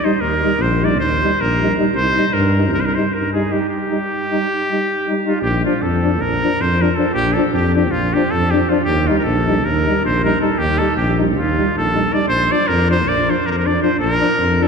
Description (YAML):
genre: balkan folk, Balkan brass band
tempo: 314 BPM (eighths)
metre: 9/8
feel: straight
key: Eb major, Bb major from 5.4 s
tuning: A4 = 440 Hz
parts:
  - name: cornet with straight mute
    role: melody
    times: 0.0-14.7 s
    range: F4 to D5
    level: -19 LUFS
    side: equal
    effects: none
  - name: mellow trombone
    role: accompaniment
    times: 0.0-14.7 s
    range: D4 to Eb4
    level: -22 LUFS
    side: left 4 dB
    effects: none
  - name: dark euphonium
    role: accompaniment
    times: 0.1-14.7 s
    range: F3 to G3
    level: -23 LUFS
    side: right 5 dB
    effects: none
  - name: mellow tuba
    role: bass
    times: 0.2-14.7 s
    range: Bb1 to G2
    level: -19 LUFS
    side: equal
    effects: none
room: wet church reverb, RT60 3.7 s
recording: recorded in a church or concert hall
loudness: -14 LUFS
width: side -5 dB against mid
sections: 0.0-5.4 A section; 5.4-14.7 B section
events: break 3.7-5.4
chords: 0.0 Eb; 2.0 Cm; 3.7 Eb; 5.4 Bb; 8.9 Eb; 12.3 Bb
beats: 0.02 | 0.22 0.41 0.60 0.80 0.99 1.18 1.38 1.57 1.76 | 1.96 2.15 2.34 2.54 2.73 2.92 3.11 3.31 3.50 | 3.69 3.88 4.08 4.27 4.46 4.66 4.85 5.04 5.23 | 5.42 5.62 5.81 6.00 6.19 6.38 6.57 6.76 6.96 | 7.15 7.34 7.53 7.72 7.91 8.10 8.29 8.48 8.68 | 8.87 9.06 9.25 9.44 9.63 9.82 10.01 10.20 10.39 | 10.58 10.77 10.96 11.15 11.34 11.53 11.72 11.91 12.10 | 12.29 12.48 12.67 12.86 13.05 13.24 13.43 13.62 13.80 | 13.99 14.18 14.37 14.56